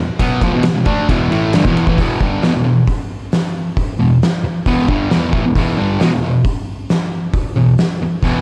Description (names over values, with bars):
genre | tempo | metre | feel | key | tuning
garage rock duo or trio | 134 BPM | 4/4 | straight | unclear | A4 = 441 Hz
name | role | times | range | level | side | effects
fuzz guitar | riff | 0.0-8.4 s | E2 to D4 | -17 LUFS | equal | distortion
oversized low-tuned drum kit | drums | 0.2-8.3 s | hi-hat, kick drum, ride cymbal, snare drum | -19 LUFS | equal | none
room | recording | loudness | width
moderate club reverb, RT60 0.5 s | none | -16 LUFS | mono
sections
0.0-2.0 A section; 2.0-8.4 B section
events
none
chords
0.0 E5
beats
| 0.20 0.64 1.09 1.54 | 1.98 2.43 2.88 3.32 | 3.77 4.21 4.66 5.11 | 5.55 6.00 6.44 6.89 | 7.33 7.78 8.22